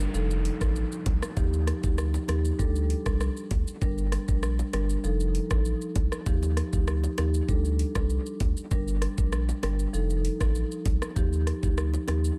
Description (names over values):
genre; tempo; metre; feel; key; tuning
dancehall; 98 BPM; 4/4; straight; unclear; A4 = 440 Hz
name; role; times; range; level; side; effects
saturated sub bass; bass; 0.0-12.3 s; F1 to Eb2; -30 LUFS; equal; none
island pop drum kit; drums; 0.0-12.4 s; hi-hat, kick drum, rim click, shaker; -31 LUFS; equal; none
downlifter; sound effects; 0.0-3.8 s; none; -46 LUFS; equal; none
marimba with medium mallets; accompaniment; 0.1-12.2 s; F3 to Bb4; -35 LUFS; equal; dub echo
bongos; percussion; 1.1-12.2 s; none; -46 LUFS; equal; dub echo
room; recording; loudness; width
little or no reverb; echo-heavy mix; -27 LUFS; mono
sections
0.0-12.4 A section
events
none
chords
0.1 F7; 1.4 Ebadd9; 2.6 Dsus4; 3.8 Gm; 5.0 F7; 6.3 Ebadd9; 7.5 Dsus4; 8.7 Gm; 9.9 F7; 11.2 Ebadd9